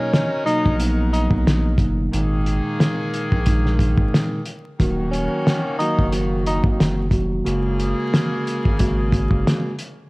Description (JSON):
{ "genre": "hip hop, boom-bap hip-hop", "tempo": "90 BPM", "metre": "4/4", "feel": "swing 56% on 16ths", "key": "G# minor", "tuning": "A4 = 441 Hz", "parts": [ { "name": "breathy tenor saxophone", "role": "melody", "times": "0.0-6.6 s", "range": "C#4 to D#4", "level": "-24 LUFS", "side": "equal", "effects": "high-pass filter, low-pass filter, analog delay" }, { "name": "mellow tine electric piano", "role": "accompaniment", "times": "0.0-9.7 s", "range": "A#2 to F#4", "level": "-24 LUFS", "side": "right 1 dB", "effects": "cassette tape, high-pass filter, low-pass filter" }, { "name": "warm horn section", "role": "stabs", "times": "0.0-9.8 s", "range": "C#3 to A#4", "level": "-29 LUFS", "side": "left 1 dB", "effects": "high-pass filter, low-pass filter, analog delay" }, { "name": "cloth-damped thuddy drum kit", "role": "drums", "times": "0.1-10.0 s", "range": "hi-hat, kick drum, snare drum", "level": "-20 LUFS", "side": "equal", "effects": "none" }, { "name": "saturated sub bass", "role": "bass", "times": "0.7-9.4 s", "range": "D#1 to B1", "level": "-22 LUFS", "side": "equal", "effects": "transformer saturation" } ], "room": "light reverb, small room ambience", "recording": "worn, warbling old tape, cassette tape, vinyl crackle, warbly pitch drift", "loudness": "-17 LUFS", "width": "side -24 dB against mid", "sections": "0.0-10.1 A section", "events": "none", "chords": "0.0 Bmaj7; 2.1 G#sus2; 4.8 D#m; 7.5 F#add9" }